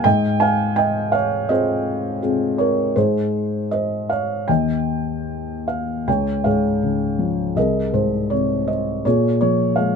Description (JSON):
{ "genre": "classical, lyrical solo piano", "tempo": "73-84 BPM", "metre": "4/4", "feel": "rubato", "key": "Ab major", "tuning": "A4 = 444 Hz", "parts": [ { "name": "felt-muted upright piano", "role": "solo", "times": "0.0-10.0 s", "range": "C2 to Ab5", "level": "-18 LUFS", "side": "equal", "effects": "none" } ], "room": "light reverb", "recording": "close, detailed microphones", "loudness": "-18 LUFS", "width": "side -6 dB against mid", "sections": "0.0-6.1 A section; 6.1-10.0 B section", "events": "none", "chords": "0.0 Ab6; 3.0 Abadd11; 4.5 N.C.; 6.1 Db; 7.6 Abadd9/C; 9.1 Bbm7", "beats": "| 0.05 0.77 1.49 2.22 | 2.96 3.72 4.49 5.28 | 6.07 6.83 7.56 8.30 | 9.05 9.78" }